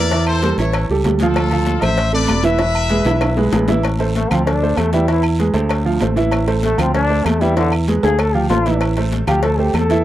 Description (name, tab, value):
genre	latin, salsa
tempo	193 BPM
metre	4/4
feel	straight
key	A minor from 3.8 s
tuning	A4 = 440 Hz
part	brilliant trumpet section	melody	0.0-3.5 s	F4 to E5	-21 LUFS	left 4 dB	none
part	clear concert grand piano	accompaniment	0.0-10.0 s	E3 to F5	-19 LUFS	right 4 dB	none
part	fingered electric bass	bass	0.0-10.0 s	E1 to E2	-19 LUFS	left 1 dB	none
part	agogo bells and timbales	percussion	0.1-9.9 s	none	-27 LUFS	right 4 dB	none
part	congas	percussion	0.1-10.0 s	none	-26 LUFS	left 2 dB	none
part	cowbell and bongos	percussion	0.1-10.0 s	none	-28 LUFS	left 7 dB	none
part	guiro	percussion	0.1-10.0 s	none	-36 LUFS	right 4 dB	none
part	claves	percussion	0.3-9.9 s	none	-31 LUFS	left 8 dB	none
part	bright trombone	melody	4.2-10.0 s	D3 to A4	-19 LUFS	left 2 dB	none
room	light reverb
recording	dry, close 1970s-style studio recording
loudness	-14 LUFS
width	side -13 dB against mid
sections	0.0-3.8 A section; 3.8-10.0 B section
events	drum fill 3.1-3.8, 8.0-8.8; trombone solo 3.8-10.0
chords	0.1 Edim; 0.7 A7; 1.4 Dm7; 2.6 E; 3.8 Am; 4.5 D5; 5.1 E7; 5.7 Am; 6.9 D5; 7.6 E7; 8.2 Am; 9.4 D5